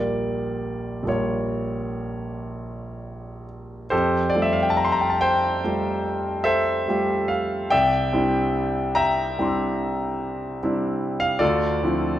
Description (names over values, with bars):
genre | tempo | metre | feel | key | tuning
classical, impressionist solo piano | 41-51 BPM (dotted quarters) | 9/8 | rubato | F major | A4 = 440 Hz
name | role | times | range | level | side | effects
clear concert grand piano | solo | 0.0-12.2 s | Bb1 to E6 | -21 LUFS | equal | none
room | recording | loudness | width
moderate recital hall reverb, RT60 1.3 s | dark, warm production | -21 LUFS | side -12 dB against mid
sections
0.0-3.9 A section; 3.9-12.2 B section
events
none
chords
0.0 Bbm6; 3.9 Fadd9; 7.7 C9; 11.4 Dm9